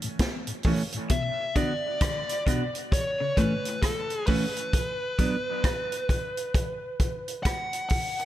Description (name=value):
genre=dub reggae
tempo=66 BPM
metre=4/4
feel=swing 61% on 16ths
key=B minor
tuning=A4 = 444 Hz
part: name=mellow tonewheel organ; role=accompaniment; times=0.0-1.0 s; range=A2 to C#4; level=-36 LUFS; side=left 2 dB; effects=slow rotary speaker
part: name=vintage drum kit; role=drums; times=0.0-8.2 s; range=hi-hat, kick drum, rim click, snare drum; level=-27 LUFS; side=equal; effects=none
part: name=mellow electric guitar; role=accompaniment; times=0.7-5.4 s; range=E3 to F#4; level=-32 LUFS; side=right 3 dB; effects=wide subtle chorus, high-pass filter, dub echo
part: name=fuzz lead guitar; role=melody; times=1.1-8.2 s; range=A4 to F#5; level=-30 LUFS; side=equal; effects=distortion, dub echo
part: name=electric guitar at the edge of break-up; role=arpeggios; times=1.1-3.6 s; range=A2 to D3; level=-34 LUFS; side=left 5 dB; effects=wide subtle chorus, dub echo
room=light reverb, small room ambience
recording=none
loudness=-25 LUFS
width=side -13 dB against mid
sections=0.0-1.1 A section; 1.1-8.2 B section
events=break 0.0-1.1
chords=0.0 A; 1.1 Bm; 2.9 A; 4.7 Bm; 6.5 N.C.